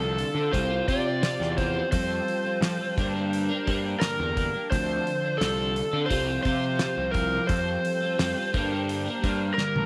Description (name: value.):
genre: psychedelic rock.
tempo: 86 BPM.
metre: 4/4.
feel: straight.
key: G minor.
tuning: A4 = 440 Hz.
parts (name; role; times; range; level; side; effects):
overdriven slide guitar; melody; 0.0-9.9 s; A4 to D5; -31 LUFS; equal; slapback echo.
string machine, cellos; sustained chords; 0.0-9.9 s; C5 to D6; -43 LUFS; equal; none.
twelve-string electric guitar; riff; 0.0-9.9 s; G2 to Bb4; -33 LUFS; equal; phaser, double-tracked.
fuzz picked electric bass; bass; 0.0-9.9 s; A1 to F3; -33 LUFS; equal; overdrive.
damped 70s drum kit; drums; 0.2-9.9 s; hi-hat, kick drum, snare drum, toms; -32 LUFS; equal; none.
room: light reverb.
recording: none.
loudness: -26 LUFS.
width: mono.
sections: 0.0-9.9 A section.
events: drum fill 9.6.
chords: 0.0 Dm7; 0.5 Csus4; 1.9 Fadd9; 3.0 Gm; 4.7 Dm7; 6.1 Csus4; 7.5 Fadd9; 8.5 Gm.